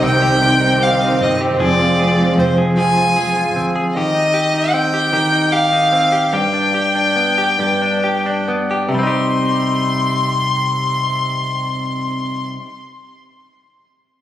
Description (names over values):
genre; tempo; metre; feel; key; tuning
six-eight pop ballad; 43-51 BPM (dotted quarters); 6/8; straight; C harmonic minor; A4 = 440 Hz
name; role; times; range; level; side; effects
direct-recorded clean electric guitar; accompaniment; 0.0-12.7 s; G2 to Ab4; -18 LUFS; left 1 dB; none
muted studio string section; sustained chords; 0.0-3.9 s; Eb3 to C4; -17 LUFS; right 2 dB; none
vintage muted fingered electric bass; bass; 0.0-3.9 s; F1 to D2; -24 LUFS; equal; none
clear violin; melody; 0.1-12.5 s; C5 to C6; -17 LUFS; left 1 dB; ping-pong delay
room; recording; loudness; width
light reverb, studio reverb; recorded on a phone in the room, club reverb, compression; -14 LUFS; side -12 dB against mid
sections
0.0-8.9 A section; 8.9-11.7 B section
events
slowing down 3.9-8.9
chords
0.0 Cm; 1.6 Fm; 3.9 Cm/Eb; 6.3 G; 8.9 Cm